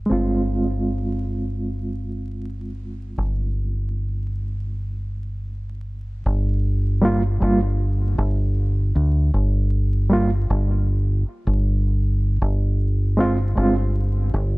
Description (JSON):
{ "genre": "trip hop", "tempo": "78 BPM", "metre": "4/4", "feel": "straight", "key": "unclear", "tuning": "A4 = 440 Hz", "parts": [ { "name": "overdriven reed electric piano", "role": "accompaniment", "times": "0.0-13.8 s", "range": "G3 to F4", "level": "-23 LUFS", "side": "right 1 dB", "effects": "fast tremolo, tape echo" }, { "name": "deep dub fingered electric bass", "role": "bass", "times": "0.0-14.6 s", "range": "G1 to D2", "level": "-20 LUFS", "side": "equal", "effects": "none" } ], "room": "little or no reverb", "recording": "vinyl crackle", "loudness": "-19 LUFS", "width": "side -24 dB against mid", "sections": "0.0-6.3 A section; 6.3-14.6 B section", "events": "none", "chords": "0.1 Fm/G; 6.3 N.C.; 12.4 Fm/G", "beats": "| 0.11 0.88 1.65 2.42 | 3.18 3.95 4.72 5.49 | 6.26 7.03 7.80 8.57 | 9.34 10.11 10.88 11.65 | 12.41 13.18 13.95" }